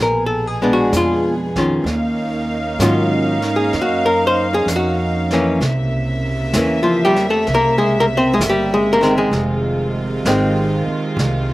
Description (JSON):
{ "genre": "jazz ballad", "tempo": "64 BPM", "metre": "4/4", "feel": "swing 67% on 8ths", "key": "unclear", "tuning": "A4 = 437 Hz", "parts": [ { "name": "archtop guitar, miked and amplified", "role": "accompaniment", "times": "0.0-11.5 s", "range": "Eb3 to C5", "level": "-16 LUFS", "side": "left 1 dB", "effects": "none" }, { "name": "dark studio string section", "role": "sustained chords", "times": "0.0-11.5 s", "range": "Cb3 to F5", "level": "-21 LUFS", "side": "right 2 dB", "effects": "none" }, { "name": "upright bass", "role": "bass", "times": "0.0-11.5 s", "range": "F1 to Ab2", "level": "-22 LUFS", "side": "right 1 dB", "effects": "none" }, { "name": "vintage brush drum kit", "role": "drums", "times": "0.9-11.5 s", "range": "brushed snare drum, hi-hat, kick drum, snare drum", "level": "-27 LUFS", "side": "equal", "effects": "none" } ], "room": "little or no reverb", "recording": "none", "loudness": "-15 LUFS", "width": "side -17 dB against mid", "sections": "0.0-11.5 A section", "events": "none", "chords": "0.0 Bb7b9; 1.9 Ebm9; 5.6 C7b9; 9.3 Fm7" }